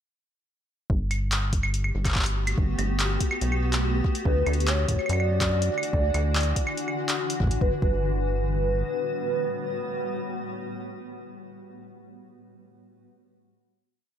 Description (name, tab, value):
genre	IDM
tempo	143 BPM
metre	4/4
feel	straight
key	G major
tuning	A4 = 440 Hz
part	granular cloud pad	sustained chords	1.9-10.7 s	A2 to G4	-32 LUFS	left 1 dB	built-in reverb
part	rubbery square bass	bass	0.9-8.8 s	G1 to F#2	-25 LUFS	equal	none
part	electronic kick drum	drums	0.9-7.9 s	none	-25 LUFS	equal	overdrive
part	electro analog drum machine	drums	1.1-7.6 s	claves, handclaps, hi-hat	-29 LUFS	equal	none
part	warbly nostalgic lead	melody	4.3-10.9 s	B4 to D5	-29 LUFS	right 1 dB	analog chorus, tape echo
room	light reverb, digital ambience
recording	none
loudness	-23 LUFS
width	side -9 dB against mid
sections	0.9-7.6 groove; 7.6-11.0 final chord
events	none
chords	0.9 Gmaj9; 4.0 Dadd9; 7.6 Gmaj9